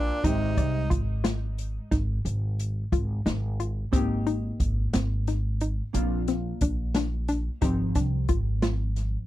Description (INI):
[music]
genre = progressive instrumental, band music in an uneven meter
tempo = 179 BPM (eighths)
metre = 11/8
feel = straight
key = F dorian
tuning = A4 = 440 Hz
[part]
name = bright tenor saxophone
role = melody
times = 0.0-0.9 s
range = D4 to Eb4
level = -32 LUFS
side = right 2 dB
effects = tape echo
[part]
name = trombone with plunger mute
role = second line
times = 0.0-0.9 s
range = Bb2 to C3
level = -37 LUFS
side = left 8 dB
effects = none
[part]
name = hollow-body jazz guitar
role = accompaniment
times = 0.0-9.3 s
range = D3 to G4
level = -34 LUFS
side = equal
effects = double-tracked left and right
[part]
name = hollow square pluck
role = arpeggios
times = 0.0-9.1 s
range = C4 to D5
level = -31 LUFS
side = left 3 dB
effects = chorus
[part]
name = upright bass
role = bass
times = 0.0-9.2 s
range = Ab1 to C2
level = -27 LUFS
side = equal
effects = none
[part]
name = open jazz drum kit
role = drums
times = 0.2-9.1 s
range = hi-hat, kick drum, snare drum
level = -29 LUFS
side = equal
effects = none
[sound]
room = little or no reverb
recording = dry, close 1970s-style studio recording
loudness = -24 LUFS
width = side -14 dB against mid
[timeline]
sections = 0.0-9.3 A section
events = none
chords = 0.2 Fm7/Ab; 3.9 Abmaj7; 5.9 Bbadd9; 7.6 Fm7/Ab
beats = | 0.24 0.57 0.91 1.25 1.58 1.92 2.25 2.59 2.92 3.26 3.59 | 3.93 4.26 4.60 4.93 5.27 5.61 5.94 6.28 6.61 6.95 7.28 | 7.62 7.95 8.29 8.62 8.96